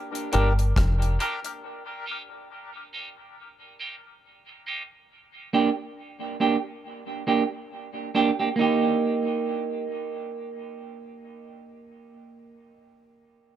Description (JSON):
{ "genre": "dub reggae", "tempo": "69 BPM", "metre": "4/4", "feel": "swing 58% on 16ths", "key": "Eb major", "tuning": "A4 = 440 Hz", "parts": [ { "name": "deep reggae drum kit", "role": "drums", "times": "0.2-1.6 s", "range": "hi-hat, kick drum, rim click", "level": "-27 LUFS", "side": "left 1 dB", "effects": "none" }, { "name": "semi-hollow electric guitar", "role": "accompaniment", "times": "0.3-12.6 s", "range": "Bb3 to G4", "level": "-26 LUFS", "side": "right 4 dB", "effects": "high-pass filter, dub echo" }, { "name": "percussive organ stab", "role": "stabs", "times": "0.3-1.5 s", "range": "D4 to Bb4", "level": "-33 LUFS", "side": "left 4 dB", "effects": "chorus, high-pass filter, dub echo" }, { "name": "deep dub fingered electric bass", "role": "bass", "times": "0.3-1.2 s", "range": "F1 to G1", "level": "-21 LUFS", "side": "equal", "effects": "none" } ], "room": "light reverb, small room ambience", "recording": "echo-heavy mix", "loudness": "-24 LUFS", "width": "side -10 dB against mid", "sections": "0.0-8.6 A section; 8.6-12.1 B section", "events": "filter sweep 0.0-5.1; break 1.6-8.6", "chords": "0.0 Gm; 1.6 Eb; 5.1 Gm; 8.6 Eb", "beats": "0.77 | 1.63 2.50 3.37 4.24 | 5.11 5.97 6.84 7.71 | 8.58 9.45 10.32 11.19" }